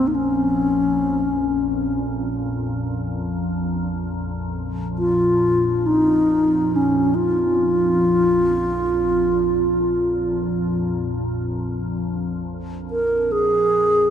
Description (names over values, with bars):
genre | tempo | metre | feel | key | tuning
world meditative, free-time meditation music | free time | none | none | Bb minor | A4 = 440 Hz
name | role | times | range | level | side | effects
breathy bright bass flute | melody | 0.0-14.1 s | Db4 to Bb4 | -19 LUFS | equal | tape echo
soft additive organ-like pad | drone | 0.0-14.1 s | Bb1 to F2 | -24 LUFS | left 1 dB | ensemble chorus, built-in reverb, phaser
room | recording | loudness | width
wet huge ambient reverb, RT60 6.2 s | dark, warm production | -18 LUFS | side -9 dB against mid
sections
0.0-14.1 A section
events
none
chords
none